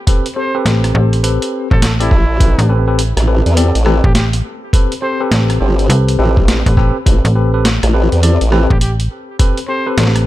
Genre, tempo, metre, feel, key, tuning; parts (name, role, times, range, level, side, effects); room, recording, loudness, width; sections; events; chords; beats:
glitch hop; 103 BPM; 4/4; swing 63% on 16ths; A minor; A4 = 445 Hz
tine electric piano; stabs; 0.1-10.2 s; C4 to D5; -18 LUFS; left 2 dB; medium stereo tremolo, sidechain pumping, dub echo
boom bap sampler-style drum kit; drums; 0.1-10.2 s; hi-hat, rim click, snare drum; -20 LUFS; equal
electronic kick drum; drums; 0.1-9.5 s; -12 LUFS; equal
breathy trumpet; melody; 0.4-9.9 s; E4 to C5; -24 LUFS; equal; vintage 12-bit sampler grit, dub echo
slap-like FM bass; bass; 0.7-10.2 s; A1 to C2; -13 LUFS; equal
formant-sweep wobble bass; bass; 2.1-8.7 s; G1 to E2; -12 LUFS; equal; chorus, tube saturation
little or no reverb; -11 LUFS; side -15 dB against mid
0.0-10.3 A section
0.0 Am9
| 0.07 0.66 1.24 1.82 | 2.40 2.98 3.57 4.15 | 4.73 5.32 5.90 6.48 | 7.06 7.64 8.23 8.81 | 9.39 9.97